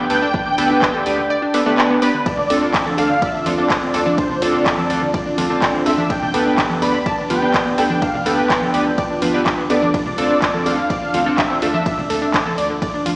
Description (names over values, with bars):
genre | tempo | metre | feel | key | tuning
progressive house | 125 BPM | 4/4 | straight | D dorian | A4 = 440 Hz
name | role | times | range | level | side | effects
wide unison lead | melody | 0.0-12.3 s | B4 to B5 | -22 LUFS | equal | ensemble chorus, sidechain pumping, digital delay
chorused polysynth | stabs | 0.0-11.7 s | D3 to B4 | -20 LUFS | equal | sidechain pumping
analog pluck | arpeggios | 0.1-13.1 s | D3 to D5 | -22 LUFS | equal | chorus, cassette tape, sidechain pumping, tape echo
round analog bass | bass | 0.1-13.2 s | D2 | -30 LUFS | equal | sidechain pumping
pop drum kit | drums | 0.1-13.2 s | handclaps, hi-hat, ride cymbal | -23 LUFS | equal | studio reverb
electronic kick drum | drums | 0.3-12.9 s | none | -24 LUFS | equal | studio reverb
evolving wavetable pad | sustained chords | 3.0-13.2 s | D3 to B4 | -28 LUFS | equal | none
congas and bongos | percussion | 2.4-13.2 s | none | -28 LUFS | equal | sidechain pumping on perc
room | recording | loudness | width
moderate digital room reverb, RT60 1.1 s | played on a big sound system in a bare room, stone room reverb, small speaker sound | -15 LUFS | side -25 dB against mid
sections
0.0-13.2 A section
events
none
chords
0.0 G/D; 2.3 Dm7; 6.1 G/D; 9.9 Dm7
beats
| 0.34 0.82 1.30 1.78 | 2.26 2.74 3.22 3.70 | 4.18 4.66 5.14 5.62 | 6.10 6.58 7.06 7.54 | 8.02 8.50 8.98 9.46 | 9.94 10.42 10.90 11.38 | 11.86 12.34 12.82